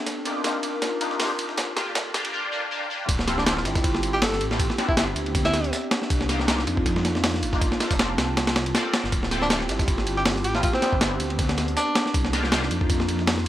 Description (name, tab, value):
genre	drum and bass, jungle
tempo	159 BPM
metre	4/4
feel	swing 55% on 16ths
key	D minor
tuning	A4 = 440 Hz
part	warbly tape-like pad	sustained chords	0.0-13.5 s	Bb3 to A5	-30 LUFS	equal	chorus, built-in reverb
part	breakbeat sampler-style drum kit	drums	0.1-13.5 s	kick drum, ride cymbal, snare drum	-24 LUFS	equal	high-pass filter on cymbals, high-pass filter on snare, high-pass filter on kick, high-pass filter on room
part	dusty soul sampler-style drum kit	drums	0.1-13.4 s	hi-hat, snare drum, tambourine	-33 LUFS	right 2 dB	high-pass filter on perc, high-pass filter on snare, high-pass filter on hats
part	band-passed chord stab	stabs	0.3-12.6 s	G3 to D5	-30 LUFS	left 1 dB	phaser, ensemble chorus, vintage 12-bit sampler grit, dub echo
part	swell and sub drop	sound effects	2.4-4.6 s	none	-38 LUFS	right 1 dB	none
part	dark detuned saw bass	bass	3.1-13.5 s	D1 to F2	-28 LUFS	equal	none
part	clear tenor saxophone	melody	3.4-5.7, 9.4-12.2 s	C4 to A4	-29 LUFS	equal	dub echo
room	light reverb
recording	dry, gritty hardware recording, high-pass filter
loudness	-21 LUFS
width	side -13 dB against mid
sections	0.0-3.1 A section; 3.1-13.5 B section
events	build-up 0.0-3.1; filter sweep 0.0-3.1; drum fill 0.1-2.3; swell 2.4-3.1; drop 3.1-13.5; impact 3.1-4.6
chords	0.1 Cm11; 1.6 Gm11; 3.1 Dm11; 4.6 Am11 (rootless); 6.1 Cm11; 7.6 Gm11 (rootless); 9.1 Dm11; 10.6 Am11 (rootless); 12.1 Cm11